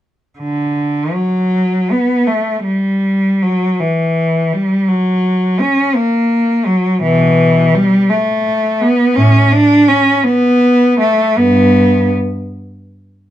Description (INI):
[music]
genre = classical, free, expressive piece for unaccompanied cello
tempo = 52-57 BPM (dotted quarters)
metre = 6/8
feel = rubato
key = B minor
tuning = A4 = 439 Hz
[part]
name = rich cello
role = solo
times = 0.4-12.1 s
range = G2 to D4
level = -11 LUFS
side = equal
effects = none
[sound]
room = light reverb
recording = dark, warm production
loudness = -11 LUFS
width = side -12 dB against mid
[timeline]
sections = 0.4-13.3 A section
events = none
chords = none